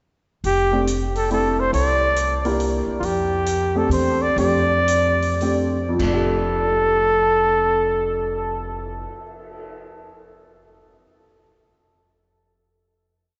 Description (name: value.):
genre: jazz, small-group swing and bop.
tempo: 97-139 BPM.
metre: 3/4.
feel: swing 66% on 8ths.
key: F major.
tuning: A4 = 441 Hz.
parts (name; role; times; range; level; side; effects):
upright bass; bass; 0.4-9.0 s; F1 to F2; -28 LUFS; equal; none.
open jazz drum kit; drums; 0.4-9.6 s; crash cymbal, cymbal swell, hi-hat, kick drum; -38 LUFS; equal; none.
warm flugelhorn; melody; 0.5-9.1 s; F4 to D5; -22 LUFS; equal; none.
warm baby grand piano; accompaniment; 0.7-9.2 s; F2 to G4; -27 LUFS; equal; none.
room: wet cathedral reverb, RT60 4.9 s.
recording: recorded in a church or concert hall, nothing above 7.9 kHz.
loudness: -20 LUFS.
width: mono.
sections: 0.4-6.0 A section; 6.0-9.7 final chord.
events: slowing down 3.0-6.0.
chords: 0.4 F69; 1.7 C9; 3.0 F69.